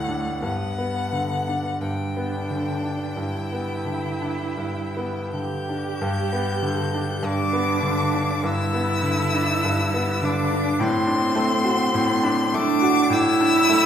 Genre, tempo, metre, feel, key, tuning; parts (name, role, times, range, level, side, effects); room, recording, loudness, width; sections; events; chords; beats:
classical, slow romantic movement for piano trio; 38-53 BPM; 4/4; rubato; G major; A4 = 440 Hz
clear violin; melody; 0.0-13.9 s; F#5 to G6; -26 LUFS; left 4 dB
rich cello; second line; 0.0-13.9 s; A3 to G4; -26 LUFS; right 5 dB
bright grand piano; accompaniment; 0.0-13.9 s; D2 to F#4; -23 LUFS; left 1 dB
wet recital hall reverb, RT60 1.6 s; heard from further back in the room; -20 LUFS; side -9 dB against mid
0.0-6.0 A section; 6.0-13.9 A section
0.4 G; 10.8 D7/A
| 0.43 1.81 3.16 4.59 | 6.02 7.25 8.45 9.67 | 10.83 11.98 13.14